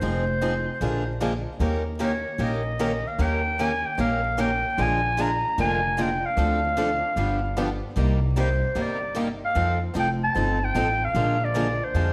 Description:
acoustic string swing (jazz manouche); 151 BPM; 4/4; swing 63% on 8ths; Bb mixolydian; A4 = 437 Hz
growling clarinet; melody; 0.0-12.1 s; C5 to Bb5; -28 LUFS; equal
picked steel-string acoustic guitar; accompaniment; 0.0-12.1 s; C3 to Bb4; -32 LUFS; equal
picked swing-style acoustic guitar; accompaniment; 0.0-12.1 s; C3 to Bb4; -35 LUFS; equal
upright bass; bass; 0.0-12.1 s; F1 to F2; -29 LUFS; equal
moderate recital hall reverb, RT60 1.5 s; vinyl crackle; -24 LUFS; mono
0.0-12.1 A section
0.0 Fm7; 0.8 Bb7; 1.6 Eb7; 4.8 Bb7; 6.4 Dm7; 7.2 G7; 8.0 Cm7; 9.6 F7; 11.2 Bb7

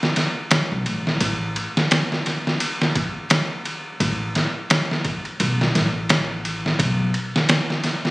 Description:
trip hop; 86 BPM; 4/4; swing 58% on 16ths; A4 = 440 Hz
trip hop sampler-style drum kit; drums; 0.0-8.1 s; kick drum, ride cymbal, snare drum; -20 LUFS; equal; overdrive, studio reverb
upright bass; bass; 0.7-7.1 s; A1 to B1; -24 LUFS; equal; tube saturation
light reverb; recorded on a phone in the room, studio reverb, compression; -19 LUFS; side -21 dB against mid
0.0-8.1 A section

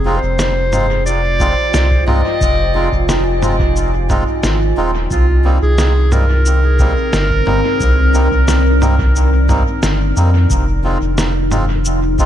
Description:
ambient dub; 89 BPM; 4/4; straight; F dorian; A4 = 440 Hz
warm clarinet; melody; 0.0-9.8 s; F4 to Eb5; -20 LUFS; right 1 dB; dub echo
deep dark ambient pad; sustained chords; 0.0-12.3 s; C4 to Ab5; -21 LUFS; equal; chorus, built-in reverb
warm sub bass; bass; 0.0-12.3 s; Eb1 to F2; -14 LUFS; equal
melodica; stabs; 0.1-12.3 s; G3 to F4; -23 LUFS; right 1 dB; dub echo
lo-fi sampler-style drum kit; drums; 0.4-12.3 s; cabasa, snare drum, toms; -22 LUFS; equal; dub echo
electronic kick drum; drums; 1.4-12.3 s; -19 LUFS; equal
light reverb, digital ambience; -12 LUFS; side -11 dB against mid
0.0-10.5 A section; 10.5-12.3 B section
0.0 Fm7; 5.1 Cm7; 10.5 Fm7

